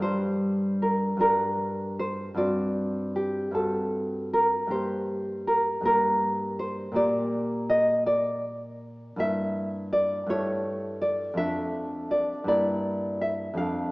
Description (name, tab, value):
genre	romantic piece for solo classical guitar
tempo	50-57 BPM (dotted quarters)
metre	6/8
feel	rubato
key	G minor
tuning	A4 = 440 Hz
part	nylon-string guitar	solo	0.0-13.9 s	F2 to F5	-24 LUFS	equal	none
room	wet concert hall reverb, RT60 1.8 s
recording	recorded in a church or concert hall, small speaker sound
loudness	-24 LUFS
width	side -23 dB against mid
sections	0.0-13.9 A section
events	none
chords	0.0 Gm; 2.4 D7/G; 4.7 Gm; 7.0 Gm/Bb; 9.2 Edim/G; 10.3 A7/G; 11.4 Dm/F; 12.5 Edim/G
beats	| 0.04 1.23 | 2.39 3.56 | 4.72 5.86 | 6.97 8.08 | 9.21 10.31 | 11.39 12.48 | 13.59